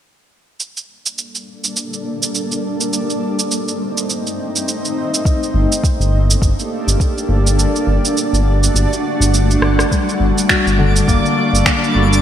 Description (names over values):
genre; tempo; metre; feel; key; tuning
organic downtempo; 103 BPM; 4/4; swing 58% on 16ths; G harmonic minor; A4 = 440 Hz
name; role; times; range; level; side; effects
granular cloud pad; sustained chords; 1.6-12.2 s; G2 to F#5; -19 LUFS; right 1 dB; built-in reverb, sidechain pumping
electronic cabasa, rim click and finger snaps; drums; 0.6-12.2 s; none; -19 LUFS; right 2 dB; studio ambience
electronic kick drum; drums; 5.3-11.8 s; none; -17 LUFS; equal; studio ambience
smooth synth bass; bass; 5.5-12.2 s; G1; -15 LUFS; equal; sidechain pumping
concert harp; arpeggios; 9.9-12.2 s; D3 to F#4; -17 LUFS; left 4 dB; low-pass filter, ping-pong delay
twinkling granular texture; texture; 10.1-12.2 s; D4 to D5; -22 LUFS; right 1 dB; built-in reverb, wide subtle chorus
room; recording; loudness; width
moderate lush hall reverb, RT60 2.8 s; bright 1980s-style digital production; -14 LUFS; side -10 dB against mid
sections
0.6-9.9 A section; 9.9-12.2 B section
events
filter sweep on ambient pad 0.6-9.9; kick drops out 7.6-9.9; drum fill 9.6; filter sweep on harp 9.9-12.2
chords
0.6 Gmadd9; 2.9 Adim/G; 5.3 Gmadd9; 7.6 D/G; 9.9 Gmadd9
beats
| 0.59 1.18 1.76 2.34 | 2.92 3.50 4.09 4.67 | 5.25 5.83 6.42 7.00 | 7.58 8.16 8.75 9.33 | 9.91 10.49 11.08 11.66